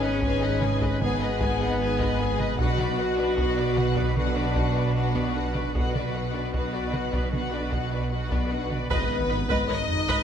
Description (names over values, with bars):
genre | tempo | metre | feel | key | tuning
cinematic, hybrid orchestral and electronic film score | 76 BPM | 4/4 | straight | unclear | A4 = 439 Hz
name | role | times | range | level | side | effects
dark symphonic violin section | melody | 0.0-10.2 s | C#5 to G#5 | -34 LUFS | left 5 dB | none
warm symphonic violin section | second line | 0.0-10.2 s | F#4 to D#5 | -33 LUFS | left 4 dB | none
clear studio viola section | accompaniment | 0.0-10.2 s | F#4 to B4 | -34 LUFS | right 2 dB | none
warm French horn section | sustained chords | 0.0-10.2 s | B3 to F#4 | -30 LUFS | left 3 dB | none
glassy wavetable pluck | arpeggios | 0.0-10.2 s | G#3 to B4 | -36 LUFS | equal | none
dark detuned saw bass | bass | 0.0-10.2 s | G#1 to B1 | -33 LUFS | equal | none
warm symphonic cello section | bass | 0.0-10.2 s | G#2 to B2 | -32 LUFS | right 4 dB | none
warm symphonic double bass section | bass | 0.0-10.2 s | G#1 to B1 | -32 LUFS | right 4 dB | none
solo taiko drums | drums | 0.2-10.2 s | none | -31 LUFS | equal | none
mellow trombone section | sustained chords | 1.0-10.2 s | D3 to B3 | -38 LUFS | right 5 dB | none
impact | sound effects | 8.9-10.2 s | none | -35 LUFS | equal | none
room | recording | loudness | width
moderate concert hall reverb, RT60 1.6 s | none | -23 LUFS | side -8 dB against mid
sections
0.0-8.9 A section; 8.9-10.2 B section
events
impact 8.9-10.2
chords
0.0 G#m; 2.6 Bm; 8.9 G#m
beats
0.23 1.01 1.80 | 2.59 3.38 4.17 4.96 | 5.75 6.54 7.33 8.12 | 8.91 9.70